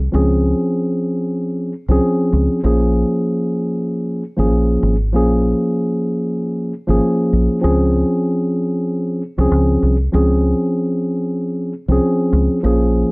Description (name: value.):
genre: hip hop, boom-bap hip-hop.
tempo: 96 BPM.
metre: 4/4.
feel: swing 58% on 16ths.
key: unclear.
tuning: A4 = 441 Hz.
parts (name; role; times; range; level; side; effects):
deep dub fingered electric bass; bass; 0.0-13.0 s; Ab1 to Db2; -16 LUFS; equal; none.
mellow tine electric piano; accompaniment; 0.1-13.1 s; F3 to Ab4; -16 LUFS; equal; cassette tape, high-pass filter, low-pass filter.
room: light reverb.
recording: none.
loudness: -15 LUFS.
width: side -30 dB against mid.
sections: 0.0-13.1 A section.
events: none.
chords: 0.0 Dbmaj7; 2.6 Bbm7; 7.6 Dbmaj7.